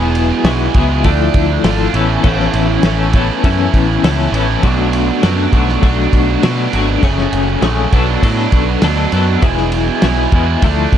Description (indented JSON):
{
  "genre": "indie rock",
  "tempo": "100 BPM",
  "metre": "4/4",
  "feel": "straight",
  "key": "A major",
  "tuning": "A4 = 439 Hz",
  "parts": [
    { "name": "raw garage guitar", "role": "riff", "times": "0.0-11.0 s", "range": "E2 to G#4", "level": "-18 LUFS", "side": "right 9 dB", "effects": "overdrive, wide subtle chorus, tape echo" },
    { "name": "twelve-string electric guitar", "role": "riff", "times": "0.0-11.0 s", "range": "E3 to A4", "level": "-18 LUFS", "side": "left 10 dB", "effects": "tremolo" },
    { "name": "growling picked electric bass", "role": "bass", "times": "0.0-11.0 s", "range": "E1 to B2", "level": "-16 LUFS", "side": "equal", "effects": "overdrive" },
    { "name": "cloth-damped thuddy drum kit", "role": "drums", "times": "0.1-11.0 s", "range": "crash cymbal, kick drum, ride cymbal, snare drum", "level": "-16 LUFS", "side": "equal", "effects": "none" }
  ],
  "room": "little or no reverb",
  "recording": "dark, warm production",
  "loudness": "-11 LUFS",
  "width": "side -10 dB against mid",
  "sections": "0.0-11.0 A section",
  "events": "none",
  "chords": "0.0 Eadd9; 1.0 Dmadd9; 1.9 Aadd9; 4.6 Bm7; 7.0 F#madd9; 7.9 Bm7; 9.4 Eadd9"
}